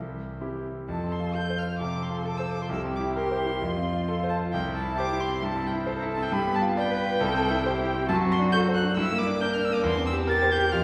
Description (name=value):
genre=quick classical-period movement for piano trio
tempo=133 BPM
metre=4/4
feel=rubato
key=F major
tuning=A4 = 440 Hz
part: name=muted violin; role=melody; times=0.0-10.8 s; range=G4 to A6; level=-33 LUFS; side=equal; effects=none
part: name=muted cello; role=second line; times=0.0-10.8 s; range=E3 to B4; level=-33 LUFS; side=equal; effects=none
part: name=clear concert grand piano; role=accompaniment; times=0.0-10.8 s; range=C2 to D5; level=-29 LUFS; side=equal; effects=none
room=wet recital hall reverb, RT60 1.4 s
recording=recorded in a church or concert hall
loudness=-27 LUFS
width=mono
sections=0.9-10.8 A section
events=none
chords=0.0 C; 0.9 F; 2.7 C7; 3.6 F; 4.5 C; 6.3 G7; 7.2 C; 8.1 D7/F#; 9.0 Gm; 9.9 C7/E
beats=0.42 | 0.90 1.35 1.81 2.26 | 2.71 3.17 3.62 4.08 | 4.53 4.97 5.42 5.88 | 6.33 6.78 7.22 7.66 | 8.10 8.53 8.97 9.42 | 9.86 10.29 10.74